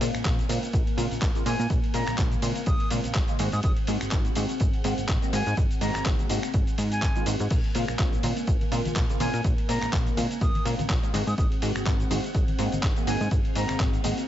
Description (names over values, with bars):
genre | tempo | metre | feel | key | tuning
filtered disco house | 124 BPM | 4/4 | swing 56% on 16ths | Ab mixolydian | A4 = 442 Hz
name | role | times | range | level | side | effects
funky polysynth comp | accompaniment | 0.0-14.2 s | Db3 to Gb4 | -32 LUFS | right 1 dB | chorus, phaser, sidechain pumping
string machine, full ensemble | sustained chords | 0.0-14.3 s | Bb3 to Ab5 | -35 LUFS | equal | ensemble chorus, sidechain pumping
plucky analog bass | bass | 0.0-14.1 s | Ab1 to Bb2 | -29 LUFS | equal | sidechain pumping
dusty soul sampler-style drum kit | drums | 0.0-14.3 s | cabasa, crash cymbal, finger snaps, handclaps, hi-hat, ride cymbal | -33 LUFS | equal | overdrive
electronic kick drum | drums | 0.3-13.9 s | none | -25 LUFS | equal | none
breathy bright concert flute | melody | 1.5-13.8 s | Ab5 to Eb6 | -34 LUFS | left 1 dB | sidechain pumping, tape echo
tambourine and congas | percussion | 7.5-14.3 s | none | -36 LUFS | left 3 dB | sidechain pumping on perc
room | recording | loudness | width
digital ambience | nothing above 7.8 kHz | -23 LUFS | side -12 dB against mid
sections
0.0-14.3 A section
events
none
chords
0.0 Bbm7; 3.4 Ab7; 7.5 Bbm7; 11.1 Ab7